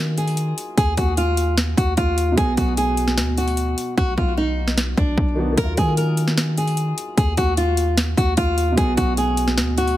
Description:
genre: hip hop, trap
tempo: 150 BPM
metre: 4/4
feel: half-time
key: Eb harmonic minor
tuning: A4 = 440 Hz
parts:
  - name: felt-muted upright piano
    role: accompaniment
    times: 0.0-10.0 s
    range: B2 to F#4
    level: -27 LUFS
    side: right 2 dB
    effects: none
  - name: warm 808-style bass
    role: bass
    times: 0.0-10.0 s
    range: B1 to Eb3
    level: -22 LUFS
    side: equal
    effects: none
  - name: nylon-string guitar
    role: melody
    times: 0.2-10.0 s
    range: D4 to Bb4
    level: -22 LUFS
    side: left 1 dB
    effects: ping-pong delay
  - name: trap drum kit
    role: drums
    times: 0.2-10.0 s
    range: hi-hat, kick drum, snare drum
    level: -22 LUFS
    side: equal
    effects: overdrive
room: light reverb, studio ambience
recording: heavily compressed radio sound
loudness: -17 LUFS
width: side -14 dB against mid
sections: 0.0-10.0 A section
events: hi-hats muted 4.0-5.6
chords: 0.0 Ebmadd9; 2.4 B5; 5.6 Ebmadd9; 8.8 B5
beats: 0.38 | 0.78 1.18 1.58 1.98 | 2.38 2.78 3.18 3.58 | 3.98 4.38 4.78 5.18 | 5.58 5.98 6.38 6.78 | 7.18 7.58 7.98 8.38 | 8.78 9.18 9.58

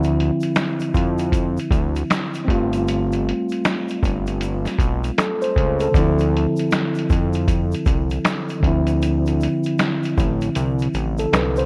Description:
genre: lo-fi hip hop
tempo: 78 BPM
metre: 4/4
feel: swing 62% on 16ths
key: D minor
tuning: A4 = 440 Hz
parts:
  - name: mellow tine electric piano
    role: accompaniment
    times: 0.0-11.7 s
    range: D3 to C5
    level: -24 LUFS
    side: equal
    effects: none
  - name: fat analog bass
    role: bass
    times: 0.0-11.7 s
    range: G1 to F2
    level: -25 LUFS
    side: equal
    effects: none
  - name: lo-fi sampler-style drum kit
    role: drums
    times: 0.0-11.7 s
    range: finger snaps, hi-hat, kick drum, snare drum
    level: -24 LUFS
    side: equal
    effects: none
  - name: egg shaker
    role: percussion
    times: 0.0-11.7 s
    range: none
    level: -49 LUFS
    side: equal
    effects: none
room: light reverb, digital ambience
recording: worn, warbling old tape, cassette tape, warbly pitch drift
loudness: -20 LUFS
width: mono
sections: 0.0-11.7 A section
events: none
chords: 0.0 Dm9; 2.5 G9sus4; 5.9 Dm9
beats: 0.56 1.33 2.10 | 2.87 3.63 4.40 5.17 | 5.94 6.71 7.48 8.25 | 9.02 9.79 10.56 11.33

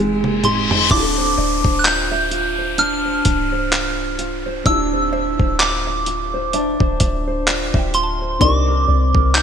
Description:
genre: contemporary R&B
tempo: 64 BPM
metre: 4/4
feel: swing 58% on 16ths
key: D minor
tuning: A4 = 439 Hz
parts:
  - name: felt-muted upright piano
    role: accompaniment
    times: 0.0-9.4 s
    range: Ab3 to C5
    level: -26 LUFS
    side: left 3 dB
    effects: ensemble chorus
  - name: nylon-string guitar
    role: arpeggios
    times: 0.0-9.4 s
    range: F3 to E5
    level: -22 LUFS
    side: right 1 dB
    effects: lush chorus
  - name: soft 808-style bass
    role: bass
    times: 0.0-9.4 s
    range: C1 to C2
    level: -23 LUFS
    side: equal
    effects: none
  - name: reverse cymbal and downlifter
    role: sound effects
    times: 0.2-8.4 s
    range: none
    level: -25 LUFS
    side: left 4 dB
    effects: none
  - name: dusty soul sampler-style drum kit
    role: drums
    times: 0.2-9.4 s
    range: crash cymbal, handclaps, hi-hat, kick drum, toms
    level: -20 LUFS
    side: equal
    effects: overdrive, vintage 12-bit sampler grit, gated reverb
  - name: soft synth bell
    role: melody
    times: 0.4-9.4 s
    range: C6 to G6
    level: -20 LUFS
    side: right 1 dB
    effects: chorus, phaser, ping-pong delay
  - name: mallet-like synth pluck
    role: texture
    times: 1.4-9.4 s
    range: C5 to A5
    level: -34 LUFS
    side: right 4 dB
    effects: none
room: light reverb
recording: bright 1980s-style digital production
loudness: -15 LUFS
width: side -8 dB against mid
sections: 0.9-9.4 A section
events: drum fill 0.0-0.9; reverse cymbal 0.2-0.9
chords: 0.0 Fm9; 0.9 Dm9; 8.4 Cm9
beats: | 0.91 1.84 2.78 3.72 | 4.66 5.59 6.53 7.47 | 8.41 9.35

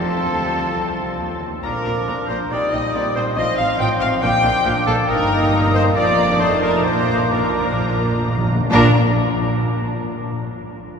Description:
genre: quick classical-period movement for symphony orchestra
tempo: 127-140 BPM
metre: 4/4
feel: rubato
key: Bb major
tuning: A4 = 440 Hz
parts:
  - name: muted studio violin section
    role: melody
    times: 0.0-9.0 s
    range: F5 to Bb5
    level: -28 LUFS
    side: left 4 dB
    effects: none
  - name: bright oboe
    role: second line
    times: 0.0-8.9 s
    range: D4 to G5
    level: -27 LUFS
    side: right 1 dB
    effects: none
  - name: bright small flute group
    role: second line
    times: 0.0-9.0 s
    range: Bb5 to Eb6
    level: -28 LUFS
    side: equal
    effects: none
  - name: mellow clarinet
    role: second line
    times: 0.0-8.9 s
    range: D4 to G5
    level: -26 LUFS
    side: left 1 dB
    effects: none
  - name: muted chamber violin section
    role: second line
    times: 0.0-9.0 s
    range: A4 to G5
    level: -24 LUFS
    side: left 1 dB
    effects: none
  - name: mellow bassoon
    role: accompaniment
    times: 0.0-8.9 s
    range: F3 to D4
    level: -28 LUFS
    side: right 1 dB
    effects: none
  - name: muted symphonic viola section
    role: accompaniment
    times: 0.0-9.0 s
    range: Bb3 to F4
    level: -28 LUFS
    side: right 1 dB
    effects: none
  - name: mellow French horn section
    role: sustained chords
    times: 0.0-8.9 s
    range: F3 to Eb4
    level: -27 LUFS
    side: left 1 dB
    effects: none
  - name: muted chamber cello section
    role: bass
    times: 0.0-9.0 s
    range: C2 to Bb2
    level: -25 LUFS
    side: equal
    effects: none
  - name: muted chamber double bass section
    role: bass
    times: 0.0-9.0 s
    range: F1 to Eb2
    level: -25 LUFS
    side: right 1 dB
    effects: none
  - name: timpani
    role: percussion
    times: 4.2-8.9 s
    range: Bb2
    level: -25 LUFS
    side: equal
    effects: none
room: wet cathedral reverb, RT60 6.8 s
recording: recorded in a church or concert hall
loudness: -16 LUFS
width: side -6 dB against mid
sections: 0.0-8.7 A section; 8.7-10.5 B section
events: timpani fill 6.9-8.7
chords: 0.0 F; 1.6 Bb; 2.5 Cm7/Bb; 3.4 F/A; 4.2 Bb; 5.1 Eb/G; 6.0 Bb/F; 6.4 F7; 6.9 Bb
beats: 0.30 0.74 1.19 | 1.64 2.07 2.51 2.95 | 3.38 3.81 4.23 4.67 | 5.10 5.53 5.96 6.40 | 6.85 7.32 7.79 8.26 | 8.72

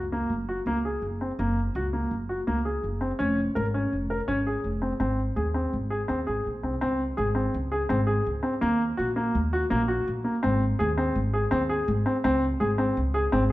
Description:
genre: contemporary instrumental, chamber music in an uneven meter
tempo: 166 BPM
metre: 5/4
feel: straight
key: unclear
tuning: A4 = 439 Hz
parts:
  - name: clear grand piano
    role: arpeggios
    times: 0.0-13.5 s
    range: Bb3 to Bb4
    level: -26 LUFS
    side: equal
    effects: none
  - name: upright bass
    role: bass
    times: 0.0-13.5 s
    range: F1 to Eb2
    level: -28 LUFS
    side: equal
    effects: none
room: wet recital hall reverb, RT60 1.6 s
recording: dark, warm production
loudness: -24 LUFS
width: side -17 dB against mid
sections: 0.0-6.8 A section; 6.8-13.5 B section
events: none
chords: 0.0 Gb; 3.2 Db/F; 5.0 Ab; 6.8 Db5; 8.6 Ebm; 10.4 Ab; 12.2 Db5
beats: 0.29 0.66 1.02 | 1.38 1.74 2.10 2.46 2.83 | 3.19 3.55 3.91 4.28 4.64 | 5.00 5.36 5.72 6.09 6.45 | 6.81 7.17 7.53 7.90 8.26 | 8.62 8.98 9.34 9.71 10.07 | 10.43 10.79 11.15 11.51 11.88 | 12.24 12.60 12.96 13.32

